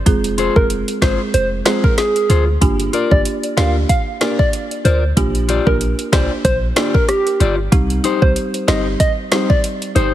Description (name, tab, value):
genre	dancehall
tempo	94 BPM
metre	4/4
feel	swing 56% on 16ths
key	C minor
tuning	A4 = 440 Hz
part	folk marimba with medium mallets	accompaniment	0.1-9.5 s	G3 to Ab4	-22 LUFS	right 3 dB	none
part	clean 808-style bass	bass	0.1-10.1 s	F1 to D2	-18 LUFS	equal	none
part	afro-pop drum kit	drums	0.1-10.1 s	hi-hat, kick drum, rim click, snare drum	-17 LUFS	equal	none
part	mellow electric guitar	arpeggios	0.4-10.1 s	Eb4 to D5	-22 LUFS	left 7 dB	none
part	soft struck synth lead	melody	0.6-10.1 s	G4 to F5	-20 LUFS	right 1 dB	chorus, tape echo
room	light reverb, digital ambience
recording	heavily compressed radio sound, multiband compression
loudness	-14 LUFS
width	side -12 dB against mid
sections	0.0-10.1 A section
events	none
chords	0.1 Fm; 2.6 Gm7; 5.2 Bb6; 7.7 Cm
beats	| 0.06 0.70 1.34 1.98 | 2.62 3.25 3.89 4.53 | 5.17 5.81 6.45 7.08 | 7.72 8.36 9.00 9.64